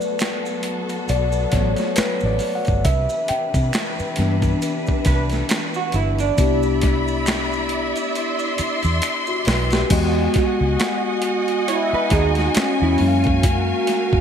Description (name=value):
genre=R&B, neo-soul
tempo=68 BPM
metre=4/4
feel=swing 58% on 16ths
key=unclear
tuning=A4 = 436 Hz
part: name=mellow tine electric piano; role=accompaniment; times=0.0-14.2 s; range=E3 to G5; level=-24 LUFS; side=left 4 dB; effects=lush chorus
part: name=warm symphonic string section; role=sustained chords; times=0.0-14.2 s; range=C3 to C6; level=-25 LUFS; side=equal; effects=none
part: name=maracas and finger snaps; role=percussion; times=0.0-9.9 s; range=none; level=-35 LUFS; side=right 4 dB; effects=none
part: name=boom bap sampler-style drum kit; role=drums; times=0.2-14.2 s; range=crash cymbal, finger snaps, hi-hat, kick drum, snare drum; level=-23 LUFS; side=right 1 dB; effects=none
part: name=vintage muted fingered electric bass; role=bass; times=1.1-14.2 s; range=F#1 to C3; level=-22 LUFS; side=right 1 dB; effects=none
part: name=vintage hollow-body jazz guitar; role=second line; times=5.1-13.2 s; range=D4 to C#5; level=-26 LUFS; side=right 5 dB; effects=analog chorus
part: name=mellow horn-like synth lead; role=melody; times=10.4-14.2 s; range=C#4 to F#4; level=-22 LUFS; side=right 1 dB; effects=chorus
room=light reverb, digital ambience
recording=bright 1980s-style digital production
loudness=-17 LUFS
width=side -8 dB against mid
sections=0.0-6.4 A section; 6.4-9.9 B section; 9.9-14.2 C section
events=tine electric piano solo 0.0-6.4; drum fill 8.1-9.9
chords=0.0 Gmaj9 (rootless); 2.8 Cmaj9; 9.9 Emaj9; 13.0 F#maj9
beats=0.20 1.08 1.96 | 2.85 3.73 4.61 5.49 | 6.38 7.26 8.14 9.02 | 9.90 10.79 11.67 12.55 | 13.43